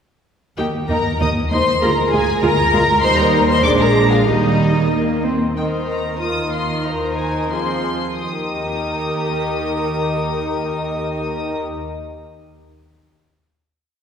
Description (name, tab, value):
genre	quick classical-period movement for string orchestra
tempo	82-100 BPM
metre	2/4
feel	rubato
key	Eb major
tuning	A4 = 439 Hz
part	rich studio violin section	melody	0.6-11.6 s	Eb5 to Eb6	-23 LUFS	left 2 dB	none
part	dark studio violin section	second line	0.6-11.6 s	Eb4 to Eb5	-22 LUFS	left 1 dB	none
part	warm studio viola section	accompaniment	0.6-11.6 s	Eb3 to F4	-20 LUFS	right 1 dB	none
part	warm studio cello section	bass	0.6-11.6 s	D2 to Eb3	-25 LUFS	right 2 dB	none
part	warm studio double bass section	bass	0.6-5.3 s	Bb1 to Eb2	-23 LUFS	right 2 dB	none
room	wet concert hall reverb, RT60 2.0 s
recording	recorded in a church or concert hall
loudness	-16 LUFS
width	side -7 dB against mid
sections	0.6-5.6 A section; 5.6-8.2 coda; 8.2-11.0 final chord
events	slowing down 4.9-8.2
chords	0.6 Eb5; 1.8 Bb7/D; 3.0 Eb; 3.6 Bb7; 4.3 Eb; 5.6 Eb5; 6.8 Ab/Eb; 8.2 Eb